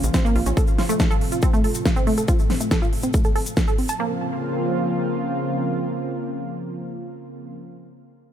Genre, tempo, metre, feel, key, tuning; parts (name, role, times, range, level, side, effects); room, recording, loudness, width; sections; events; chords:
uplifting trance; 140 BPM; 4/4; straight; Bb harmonic minor; A4 = 439 Hz
lush unison pad; sustained chords; 0.0-7.5 s; A2 to F4; -26 LUFS; equal; chorus, sidechain pumping
wide unison pluck; arpeggios; 0.0-4.2 s; A3 to A5; -25 LUFS; right 1 dB; sidechain pumping, tape echo
tight sequencer bass; bass; 0.0-0.5 s; Bb1; -22 LUFS; equal; sidechain pumping
big-room dance drum kit; drums; 0.0-4.0 s; hi-hat, snare drum; -28 LUFS; equal
tube shaker; percussion; 0.0-4.0 s; -35 LUFS; left 6 dB
electronic kick drum; drums; 0.1-3.7 s; -20 LUFS; equal
little or no reverb; -19 LUFS; side -10 dB against mid
0.0-4.0 A section; 4.0-7.4 B section
filter sweep on analog synth pad 0.0-4.0
0.0 Bbmadd9; 0.6 F/A; 4.0 Bbmadd9